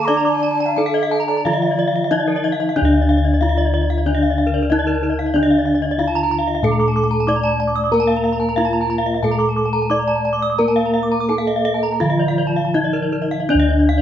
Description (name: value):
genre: Balinese gamelan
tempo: 79-93 BPM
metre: 4/4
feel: straight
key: D pelog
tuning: A4 = 441 Hz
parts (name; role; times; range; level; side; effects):
- gamelan-type bronze metallophone; melody; 0.0-14.0 s; D4 to D5; -20 LUFS; equal; none
- breathy xiao; second line; 0.0-2.4 s; D5 to D6; -25 LUFS; right 2 dB; none
- gamelan-type bronze metallophone; accompaniment; 0.0-13.5 s; D3 to D4; -26 LUFS; equal; none
- gamelan-type bronze metallophone; arpeggios; 0.0-14.0 s; Bb4-20c to Eb6+20c; -24 LUFS; right 3 dB; none
- gamelan-type bossed gongs; bass; 0.0-14.0 s; D2 to D5; -20 LUFS; left 1 dB; none
- gamelan-type bronze metallophone; arpeggios; 0.1-14.0 s; Bb4-20c to D6; -23 LUFS; left 4 dB; none
room: moderate large studio reverb, RT60 1.2 s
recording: band playing live in one room, nothing above 7.8 kHz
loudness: -15 LUFS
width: side -10 dB against mid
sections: 0.0-2.8 A section; 2.8-13.5 B section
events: none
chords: none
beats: | 0.09 0.78 1.46 2.12 | 2.77 3.41 4.05 4.70 | 5.34 5.99 6.63 7.27 | 7.92 8.57 9.23 9.90 | 10.59 11.30 12.02 12.75 | 13.50